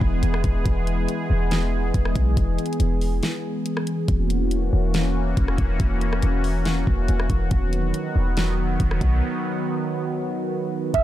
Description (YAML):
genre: hip hop, atmospheric cloud-rap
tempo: 140 BPM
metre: 4/4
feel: half-time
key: unclear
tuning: A4 = 439 Hz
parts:
  - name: sweeping resonant pad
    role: sustained chords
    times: 0.0-11.0 s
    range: D#3 to G#4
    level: -25 LUFS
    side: equal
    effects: chorus, sidechain pumping
  - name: warm 808-style bass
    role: bass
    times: 0.0-11.0 s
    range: E1 to B1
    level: -22 LUFS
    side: equal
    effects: none
  - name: smooth R&B drum kit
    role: drums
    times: 0.0-11.0 s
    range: hi-hat, kick drum, rim click, snare drum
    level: -25 LUFS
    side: equal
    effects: none
  - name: muted felt-like synth keys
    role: arpeggios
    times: 10.9-11.0 s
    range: E5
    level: -18 LUFS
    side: right 7 dB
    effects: chorus
room: digital ambience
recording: none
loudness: -20 LUFS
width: side -13 dB against mid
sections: 0.0-10.9 A section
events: break 3.2-4.1, 9.2-10.9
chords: 0.0 E; 4.1 F#7/E; 7.5 B/E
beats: 0.23 | 0.66 1.08 1.51 1.94 | 2.37 2.80 3.23 3.66 | 4.08 4.51 4.94 5.37 | 5.80 6.23 6.66 7.08 | 7.51 7.94 8.37 8.80 | 9.23 9.66 10.09 10.51 | 10.94